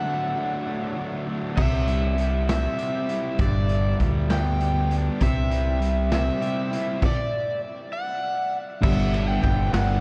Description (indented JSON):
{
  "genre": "indie rock",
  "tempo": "66 BPM (dotted quarters)",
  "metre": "6/8",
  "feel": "straight",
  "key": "G major",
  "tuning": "A4 = 440 Hz",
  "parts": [
    { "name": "crunchy overdriven guitar", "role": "melody", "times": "0.0-10.0 s", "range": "D5 to G5", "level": "-31 LUFS", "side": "equal", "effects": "none" },
    { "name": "fuzz guitar", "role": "riff", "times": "0.0-10.0 s", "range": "G2 to G4", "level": "-30 LUFS", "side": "equal", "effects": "distortion" },
    { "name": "growling fingered electric bass", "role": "bass", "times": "1.6-10.0 s", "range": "G1 to D2", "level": "-26 LUFS", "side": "equal", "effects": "overdrive" },
    { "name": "raw garage drum kit", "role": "drums", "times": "1.6-9.9 s", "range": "crash cymbal, hi-hat, kick drum, ride cymbal, snare drum", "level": "-29 LUFS", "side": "equal", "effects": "none" },
    { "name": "string machine, full ensemble", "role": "sustained chords", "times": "9.5-10.0 s", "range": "G3 to B4", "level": "-37 LUFS", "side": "equal", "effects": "none" }
  ],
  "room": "moderate huge ambient reverb, RT60 8.3 s",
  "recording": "dreamy mix soaked in reverb, cassette tape",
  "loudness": "-24 LUFS",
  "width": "mono",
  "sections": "0.0-1.6 A section; 1.6-8.8 B section; 8.8-10.0 C section",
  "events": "break 0.0-1.6; stop 7.0-8.8",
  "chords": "0.0 D; 1.6 C; 3.4 G; 5.2 C; 7.0 N.C.; 8.8 G6"
}